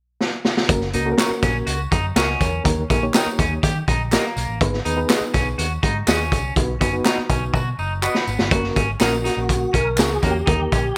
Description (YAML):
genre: uptempo 1960s-style soul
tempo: 123 BPM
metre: 4/4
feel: straight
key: F# major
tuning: A4 = 440 Hz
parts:
  - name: raw garage drum kit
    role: drums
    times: 0.2-10.8 s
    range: hi-hat, kick drum, snare drum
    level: -23 LUFS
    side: equal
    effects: none
  - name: reed electric piano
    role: accompaniment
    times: 0.7-10.8 s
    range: A#3 to B5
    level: -28 LUFS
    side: equal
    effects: fast tremolo
  - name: picked electric bass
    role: bass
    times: 0.7-10.9 s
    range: F#1 to D#3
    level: -28 LUFS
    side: equal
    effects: none
  - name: tambourine and handclaps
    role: percussion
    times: 0.7-10.8 s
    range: none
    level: -33 LUFS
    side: equal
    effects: none
  - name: electric guitar at the edge of break-up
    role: riff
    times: 0.9-10.9 s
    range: A#3 to G4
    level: -29 LUFS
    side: equal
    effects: tube saturation, spring reverb
  - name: electric guitar through a small old amp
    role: stabs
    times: 1.2-10.3 s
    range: C#4 to D#5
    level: -28 LUFS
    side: equal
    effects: analog chorus
  - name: mellow tonewheel organ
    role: melody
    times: 9.3-11.0 s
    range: F#4 to A#4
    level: -26 LUFS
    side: equal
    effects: chorus vibrato, fast rotary speaker
room: light reverb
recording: none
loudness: -20 LUFS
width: mono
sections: 0.7-8.5 A section; 8.5-11.0 B section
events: drum fill 0.2-0.7, 7.5-8.5; reed electric piano fill 7.8-8.5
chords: 0.0 N.C.; 0.7 F#; 2.6 D#; 4.6 G#m; 6.6 B; 8.5 F#; 10.5 D#